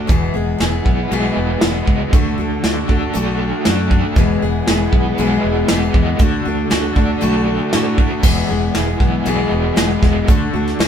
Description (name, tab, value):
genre	folk rock and heartland rock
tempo	118 BPM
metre	4/4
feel	straight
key	E mixolydian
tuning	A4 = 440 Hz
part	picked steel-string acoustic guitar	accompaniment	0.0-10.9 s	E2 to G#4	-20 LUFS	left 3 dB	none
part	crunchy overdriven guitar	riff	0.0-10.9 s	E2 to D4	-23 LUFS	right 1 dB	tremolo
part	dark symphonic string section	sustained chords	0.1-10.9 s	G#3 to A4	-27 LUFS	right 2 dB	none
part	fingered electric bass	bass	0.1-10.9 s	E1 to A2	-21 LUFS	equal	none
part	soft brush drum kit	drums	0.1-10.9 s	crash cymbal, hi-hat, kick drum, snare drum	-16 LUFS	right 1 dB	none
room	light reverb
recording	band playing live in one room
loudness	-14 LUFS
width	side -8 dB against mid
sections	0.0-8.2 A section; 8.2-10.9 A section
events	none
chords	0.1 E; 2.1 D; 4.2 E; 6.2 D; 8.2 E; 10.3 D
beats	| 0.10 0.60 1.11 1.62 | 2.13 2.63 3.14 3.65 | 4.16 4.67 5.18 5.69 | 6.20 6.71 7.21 7.72 | 8.23 8.74 9.26 9.77 | 10.28 10.79